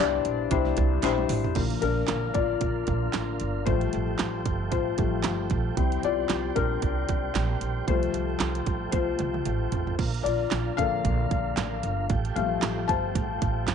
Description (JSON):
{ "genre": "piano-driven pop", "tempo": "114 BPM", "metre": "4/4", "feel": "swing 56% on 16ths", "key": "F major", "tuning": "A4 = 437 Hz", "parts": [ { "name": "felt-muted upright piano", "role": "accompaniment", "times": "0.0-13.7 s", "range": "G2 to A5", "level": "-28 LUFS", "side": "left 10 dB", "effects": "none" }, { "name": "upright bass", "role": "bass", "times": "0.0-13.7 s", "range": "G1 to C2", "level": "-30 LUFS", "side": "right 2 dB", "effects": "none" }, { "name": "pop drum kit", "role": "drums", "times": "0.2-13.7 s", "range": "crash cymbal, handclaps, hi-hat, kick drum, snare drum, toms", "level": "-30 LUFS", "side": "right 6 dB", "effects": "none" }, { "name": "group handclap", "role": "percussion", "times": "1.0-1.2 s", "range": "none", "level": "-34 LUFS", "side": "right 15 dB", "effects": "none" }, { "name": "tonewheel organ", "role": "sustained chords", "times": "1.6-13.7 s", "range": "D3 to G4", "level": "-36 LUFS", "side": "right 13 dB", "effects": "chorus vibrato, wide subtle chorus" } ], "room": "light reverb, digital ambience", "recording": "1960s-style stereo with parts hard left and right, nothing above 10.3 kHz", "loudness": "-24 LUFS", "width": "side -7 dB against mid", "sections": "0.0-1.6 A section; 1.6-13.7 B section", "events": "drum fill 1.0-1.6, 8.9-10.0; felt piano solo 1.6-13.7", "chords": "0.0 Cadd9; 1.6 Bb; 3.7 Fadd9; 5.8 C; 7.9 Fadd9; 10.0 Bb; 12.1 Fadd9" }